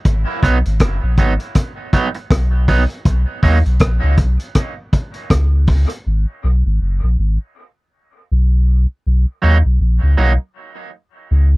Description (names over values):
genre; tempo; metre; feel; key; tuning
dub reggae; 80 BPM; 4/4; swing 59% on 16ths; G# minor; A4 = 442 Hz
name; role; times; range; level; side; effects
vintage drum kit; drums; 0.0-6.0 s; hi-hat, kick drum, rim click; -15 LUFS; equal; none
warm sub bass; bass; 0.1-11.6 s; F#1 to D#2; -13 LUFS; equal; none
electric guitar at the edge of break-up; accompaniment; 0.4-3.6, 9.4-10.3 s; F#3 to D#4; -21 LUFS; right 4 dB; dub echo
room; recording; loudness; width
little or no reverb; dry, close 1970s-style studio recording; -14 LUFS; side -22 dB against mid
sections
0.0-11.6 A section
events
part muted 6.0-11.6; break 10.5-11.6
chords
0.1 G#m7; 3.1 Bmaj7; 4.6 N.C.; 6.0 G#m; 9.0 Bmaj7; 10.5 N.C.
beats
| 0.05 0.80 1.55 2.30 | 3.05 3.80 4.55 5.30 | 6.05 6.80 7.55 8.30 | 9.05 9.80 10.55 11.30